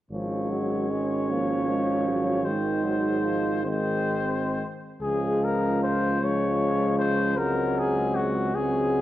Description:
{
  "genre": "classical, hymn-like piece for brass band",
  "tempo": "41-53 BPM (dotted quarters)",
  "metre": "6/8",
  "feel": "rubato",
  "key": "Db major",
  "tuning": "A4 = 440 Hz",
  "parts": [
    { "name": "clear cornet", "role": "melody", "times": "0.1-9.0 s", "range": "Gb4 to Db5", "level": "-29 LUFS", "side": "left 3 dB", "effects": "none" },
    { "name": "mellow French horn section", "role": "second line", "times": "0.1-9.0 s", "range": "C4 to Eb4", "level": "-30 LUFS", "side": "right 4 dB", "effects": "none" },
    { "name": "brilliant trombone", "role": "accompaniment", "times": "0.1-9.0 s", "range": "Eb3 to Ab3", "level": "-31 LUFS", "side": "right 1 dB", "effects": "none" },
    { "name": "mellow euphonium", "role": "accompaniment", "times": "0.1-9.0 s", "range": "Gb3 to Bb3", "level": "-30 LUFS", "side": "left 2 dB", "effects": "none" },
    { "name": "warm tuba", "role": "bass", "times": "0.1-9.0 s", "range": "Ab1 to Db2", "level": "-31 LUFS", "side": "equal", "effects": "none" }
  ],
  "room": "wet scoring stage reverb, RT60 1.6 s",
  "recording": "worn, warbling old tape, cassette tape, warbly pitch drift",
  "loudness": "-23 LUFS",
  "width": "side -13 dB against mid",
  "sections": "0.1-5.0 A section; 5.0-9.0 B section",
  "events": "none",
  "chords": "0.1 Db/Ab; 2.5 Ab7; 5.0 Db; 7.4 Ab7/Db"
}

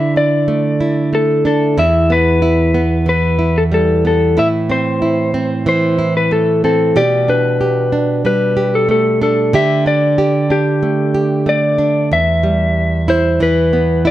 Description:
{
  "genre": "acoustic pop",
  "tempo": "93 BPM",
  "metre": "4/4",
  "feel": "straight",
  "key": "unclear",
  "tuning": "A4 = 440 Hz",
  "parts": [
    { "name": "electric slide guitar", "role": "melody", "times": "0.0-14.1 s", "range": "G4 to E5", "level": "-15 LUFS", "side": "left 2 dB", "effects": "plate reverb" },
    { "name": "nylon-string guitar", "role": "accompaniment", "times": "0.0-14.1 s", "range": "E2 to G4", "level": "-14 LUFS", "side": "right 2 dB", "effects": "none" }
  ],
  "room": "light reverb",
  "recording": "none",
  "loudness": "-12 LUFS",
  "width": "side -14 dB against mid",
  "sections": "0.0-12.1 A section; 12.1-14.1 B section",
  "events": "none",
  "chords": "0.0 Dsus2; 1.8 Em; 4.4 Am; 7.0 Gadd9/B; 9.5 Dsus4; 12.1 Em"
}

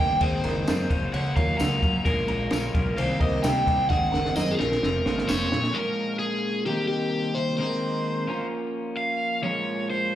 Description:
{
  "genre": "indie rock",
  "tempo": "130 BPM",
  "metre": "4/4",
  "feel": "straight",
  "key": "Bb minor",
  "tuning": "A4 = 440 Hz",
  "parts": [
    { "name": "crunchy overdriven guitar", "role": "melody", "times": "0.0-10.2 s", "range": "G4 to Bb5", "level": "-27 LUFS", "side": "equal", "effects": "phaser, slapback echo, digital delay" },
    { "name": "glassy synth bell", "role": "second line", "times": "0.0-5.5 s", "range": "F4 to Gb5", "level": "-38 LUFS", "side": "equal", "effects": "chorus" },
    { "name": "electric guitar through a small old amp", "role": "riff", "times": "0.0-10.2 s", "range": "Bb2 to C5", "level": "-32 LUFS", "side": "right 4 dB", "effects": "wide subtle chorus, slapback echo, digital delay" },
    { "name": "twelve-string electric guitar", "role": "riff", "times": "0.0-10.2 s", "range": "Eb3 to Ab4", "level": "-31 LUFS", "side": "left 4 dB", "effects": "none" },
    { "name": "fuzz fingered electric bass", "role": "bass", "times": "0.0-5.7 s", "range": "F1 to C3", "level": "-28 LUFS", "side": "equal", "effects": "overdrive" },
    { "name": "compact cocktail drum kit", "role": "drums", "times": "0.2-5.7 s", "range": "crash cymbal, kick drum, snare drum", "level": "-27 LUFS", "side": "equal", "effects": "none" },
    { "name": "tambourine", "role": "percussion", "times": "0.7-5.4 s", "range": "none", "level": "-41 LUFS", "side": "right 1 dB", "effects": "none" }
  ],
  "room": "studio ambience",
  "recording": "live gig heard through the venue's PA, club reverb",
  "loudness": "-23 LUFS",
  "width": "side -12 dB against mid",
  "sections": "0.0-5.7 A section; 5.7-10.2 B section",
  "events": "drum fill 3.9-5.7",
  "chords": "0.2 Abadd9; 0.9 Gbmaj7; 2.1 Bbm7; 3.0 Cm7; 3.9 Abadd9; 4.6 Bbmadd9; 5.7 Bbm7; 6.7 Cm7; 7.6 Abadd9; 8.3 Bbm/F; 9.4 Bbm7"
}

